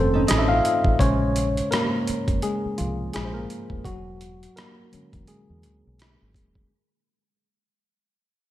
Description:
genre	R&B, neo-soul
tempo	84 BPM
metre	4/4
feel	swing 57% on 16ths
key	unclear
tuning	A4 = 440 Hz
part	tine electric piano	accompaniment	0.0-6.7 s	Db3 to F5	-23 LUFS	left 1 dB	overdrive, medium stereo tremolo
part	deep dub fingered electric bass	bass	0.0-6.7 s	Eb1 to E2	-26 LUFS	equal	none
part	nylon-string guitar	second line	0.1-0.5 s	Db4 to A4	-30 LUFS	right 5 dB	analog chorus
part	boom bap sampler-style drum kit	drums	0.3-6.7 s	hi-hat, kick drum, rim click	-26 LUFS	equal	gated reverb
room	moderate lush hall reverb, RT60 2.6 s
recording	bright 1980s-style digital production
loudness	-20 LUFS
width	side -13 dB against mid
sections	0.0-6.7 A section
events	fade-out 0.0-6.7; tine electric piano solo 0.0-6.7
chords	0.0 F7b13; 1.0 Bbm7; 3.8 E13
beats	0.27 | 0.98 1.70 2.41 3.13 | 3.84 4.56 5.27 5.98

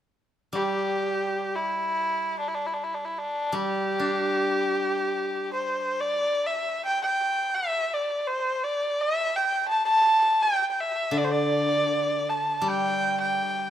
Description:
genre	chinese traditional, Chinese chamber ensemble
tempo	63-86 BPM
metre	2/4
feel	rubato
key	G zhi mode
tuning	A4 = 439 Hz
part	rich erhu	melody	0.5-13.7 s	D4 to A5	-24 LUFS	equal	none
part	steel-string zither	accompaniment	0.5-6.2, 11.1-13.7 s	D3 to D4	-30 LUFS	left 2 dB	none
room	light reverb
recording	none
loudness	-23 LUFS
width	side -10 dB against mid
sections	0.0-6.8 A section; 6.8-13.7 B section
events	none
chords	none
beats	0.62 | 1.52 2.42 | 3.31 4.20 | 5.08 6.00 | 6.84 7.57 | 8.28 8.98 | 9.70 10.42 | 11.14 11.88 | 12.63 13.38

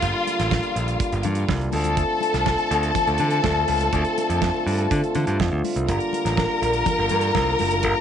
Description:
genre	disco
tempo	123 BPM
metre	4/4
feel	straight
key	D minor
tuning	A4 = 440 Hz
part	clear studio string section	second line	0.0-8.0 s	F4 to Bb5	-23 LUFS	left 2 dB	slapback echo
part	mellow French horn section	sustained chords	0.0-8.0 s	D3 to F4	-27 LUFS	right 1 dB	none
part	modern bright picked electric bass	bass	0.0-7.9 s	F#1 to D3	-24 LUFS	right 1 dB	none
part	damped 70s drum kit	drums	0.0-8.0 s	hi-hat, kick drum, snare drum	-28 LUFS	right 4 dB	none
part	congas	percussion	0.0-8.0 s	none	-33 LUFS	left 12 dB	none
room	light reverb, studio reverb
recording	1960s-style stereo, nothing above 10.5 kHz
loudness	-19 LUFS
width	side -8 dB against mid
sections	0.0-8.0 A section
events	none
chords	0.0 Gm7; 1.7 Dm7; 5.9 Gm7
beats	| 0.03 0.51 1.00 1.49 | 1.98 2.46 2.95 3.44 | 3.93 4.42 4.91 5.39 | 5.88 6.37 6.86 7.35 | 7.84

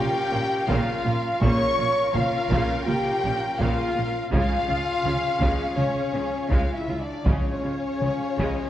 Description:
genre	cinematic, epic orchestral film score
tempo	82 BPM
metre	4/4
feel	straight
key	unclear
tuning	A4 = 440 Hz
part	warm symphonic violin section	melody	0.0-8.7 s	C#5 to Db6	-32 LUFS	left 4 dB	none
part	mellow flute section	second line	0.0-8.7 s	C#5 to Db6	-32 LUFS	left 3 dB	none
part	warm symphonic violin section	second line	0.0-8.7 s	C#5 to Db6	-33 LUFS	left 2 dB	none
part	rich chamber viola section	accompaniment	0.0-8.7 s	Db3 to F4	-33 LUFS	right 1 dB	none
part	rich symphonic string section	sustained chords	0.0-8.7 s	Db4 to F5	-34 LUFS	right 1 dB	none
part	warm French horn section	sustained chords	0.0-8.7 s	C#4 to Db5	-28 LUFS	left 1 dB	none
part	warm symphonic cello section	bass	0.0-8.5 s	Bb2 to C#3	-32 LUFS	right 2 dB	none
part	warm symphonic double bass section	bass	0.0-8.5 s	Bb1 to C#2	-31 LUFS	right 3 dB	none
part	taiko ensemble	drums	0.7-8.7 s	none	-27 LUFS	equal	none
part	cymbal swell	sound effects	8.6-8.7 s	none	-55 LUFS	equal	none
room	wet scoring stage reverb, RT60 1.6 s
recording	worn, warbling old tape, cassette tape, warbly pitch drift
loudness	-21 LUFS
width	side -12 dB against mid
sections	0.0-8.7 A section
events	none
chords	0.0 Bbm; 4.3 C#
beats	0.69 | 1.42 2.15 2.87 3.60 | 4.33 5.05 5.78 6.51 | 7.26 8.02

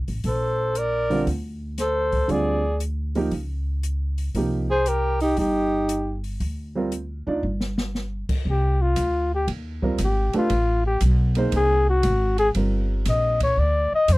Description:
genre	jazz, small-group swing and bop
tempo	117 BPM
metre	4/4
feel	swing 68% on 8ths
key	C minor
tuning	A4 = 440 Hz
part	upright bass	bass	0.0-14.2 s	G1 to F2	-24 LUFS	equal	none
part	open jazz drum kit	drums	0.1-14.2 s	crash cymbal, hi-hat, kick drum, ride cymbal, snare drum	-31 LUFS	equal	none
part	mellow flugelhorn	melody	0.3-14.2 s	F4 to Eb5	-23 LUFS	left 2 dB	none
part	breathy tenor saxophone	second line	0.3-6.2 s	Eb4 to Bb4	-26 LUFS	right 2 dB	none
part	dark grand piano	accompaniment	1.1-13.4 s	D3 to D5	-26 LUFS	right 2 dB	none
room	light reverb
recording	dry, close 1970s-style studio recording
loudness	-20 LUFS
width	side -20 dB against mid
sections	0.0-8.5 A section; 8.5-14.2 B section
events	drum fill 7.4-7.9; flugelhorn solo 8.5-14.2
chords	0.2 Bbmaj7; 2.3 Dm7b5; 3.3 N.C.; 4.3 Cm7; 6.4 Ebmaj13/D; 7.4 N.C.; 8.5 Cm; 10.5 Adim; 11.5 Ab9; 12.6 Gm7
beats	| 0.25 0.76 1.27 1.78 | 2.30 2.81 3.32 3.84 | 4.35 4.86 5.38 5.89 | 6.40 6.92 7.43 7.94 | 8.46 8.97 9.48 9.99 | 10.51 11.02 11.53 12.04 | 12.55 13.07 13.58 14.09

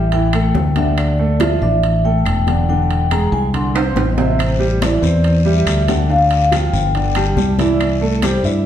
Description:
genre	Afro-Cuban jazz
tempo	141 BPM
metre	4/4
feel	straight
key	unclear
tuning	A4 = 441 Hz
part	vibraphone with soft mallets	melody	0.0-8.7 s	C5 to B#5	-20 LUFS	left 2 dB	none
part	clear baby grand piano	accompaniment	0.0-8.7 s	B#2 to E5	-20 LUFS	right 3 dB	none
part	fingered electric bass	bass	0.0-8.7 s	E1 to G2	-16 LUFS	left 1 dB	none
part	congas	percussion	0.1-8.7 s	none	-25 LUFS	left 3 dB	none
part	timbales	percussion	0.1-8.4 s	none	-26 LUFS	right 5 dB	none
part	claves	percussion	0.3-8.4 s	none	-34 LUFS	left 6 dB	none
part	guiro	percussion	4.4-8.7 s	none	-31 LUFS	left 6 dB	none
room	wet large studio reverb, RT60 1.2 s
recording	heard from further back in the room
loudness	-13 LUFS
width	side -10 dB against mid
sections	0.0-8.7 A section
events	drum fill 3.7-4.4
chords	0.1 A5; 1.0 Dmadd9; 2.7 E7alt; 4.4 Am7; 6.1 Dm; 6.9 Gsus2; 7.8 C69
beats	0.12 0.55 | 0.97 1.40 1.83 2.25 | 2.68 3.11 3.54 3.96 | 4.39 4.82 5.24 5.67 | 6.09 6.52 6.95 7.38 | 7.80 8.23 8.65

